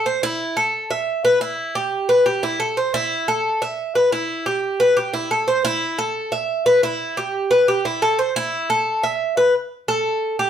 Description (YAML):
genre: latin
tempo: 177 BPM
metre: 4/4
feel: straight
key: unclear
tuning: A4 = 439 Hz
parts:
  - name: Cuban tres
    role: solo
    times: 0.0-10.5 s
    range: E4 to E5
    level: -18 LUFS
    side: equal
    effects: none
room: wet studio reverb, RT60 0.7 s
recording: band playing live in one room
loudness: -18 LUFS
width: side -9 dB against mid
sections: 0.0-9.5 A section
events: none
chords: none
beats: | 0.06 0.40 0.73 1.07 | 1.41 1.75 2.09 2.43 | 2.77 3.10 3.44 3.78 | 4.12 4.46 4.80 5.13 | 5.47 5.81 6.15 6.49 | 6.83 7.17 7.51 7.84 | 8.18 8.52 8.86 9.20 | 9.54 9.88 10.22